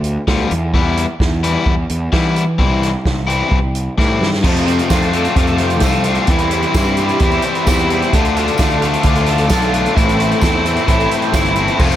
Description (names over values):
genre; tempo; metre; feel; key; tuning
indie rock; 130 BPM; 4/4; straight; unclear; A4 = 440 Hz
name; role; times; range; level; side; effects
fuzz picked electric bass; bass; 0.0-12.0 s; F1 to E3; -19 LUFS; right 1 dB; overdrive
vintage drum kit; drums; 0.0-12.0 s; crash cymbal, hi-hat, kick drum, snare drum; -18 LUFS; right 1 dB; none
crunchy overdriven guitar; riff; 0.3-12.0 s; F2 to F4; -17 LUFS; left 5 dB; none
string machine, violas; sustained chords; 4.4-12.0 s; G4 to D6; -24 LUFS; right 1 dB; ensemble chorus
overdriven electric guitar; riff; 4.4-12.0 s; A2 to C5; -21 LUFS; right 7 dB; analog chorus, diffuse ambient delay
tambourine; percussion; 4.9-11.4 s; none; -34 LUFS; right 5 dB; none
room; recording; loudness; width
moderate plate reverb, RT60 2.3 s; dreamy mix soaked in reverb; -13 LUFS; side -12 dB against mid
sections
0.0-4.4 A section; 4.4-12.0 B section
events
drum fill 4.0-4.4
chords
0.0 G7/D; 0.5 Em; 2.6 C; 4.4 F6; 6.3 C/E; 8.1 Dm; 10.0 Am